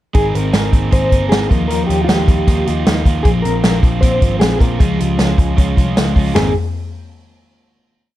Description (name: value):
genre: jangly indie pop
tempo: 155 BPM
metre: 4/4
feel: straight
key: Ab major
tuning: A4 = 440 Hz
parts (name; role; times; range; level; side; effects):
- mellow electric guitar; melody; 0.1-6.5 s; G4 to C5; -20 LUFS; left 1 dB; tremolo, slapback echo
- overdriven electric guitar; accompaniment; 0.1-6.5 s; Bb2 to Bb4; -23 LUFS; right 6 dB; none
- mellow electric guitar; arpeggios; 0.1-6.5 s; Eb3 to Ab4; -21 LUFS; left 2 dB; spring reverb, slapback echo
- vintage muted picked electric bass; bass; 0.1-6.5 s; G1 to Eb2; -19 LUFS; equal; none
- vintage drum kit; drums; 0.1-6.4 s; hi-hat, kick drum, ride cymbal, snare drum, toms; -14 LUFS; equal; none
room: light reverb, small room ambience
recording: dark, warm production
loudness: -12 LUFS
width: side -14 dB against mid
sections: 0.2-6.4 verse; 6.4-7.9 final chord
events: none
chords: 0.2 Abadd9; 1.5 Ebadd9; 3.3 Bbadd9; 4.8 Db; 6.4 Abadd9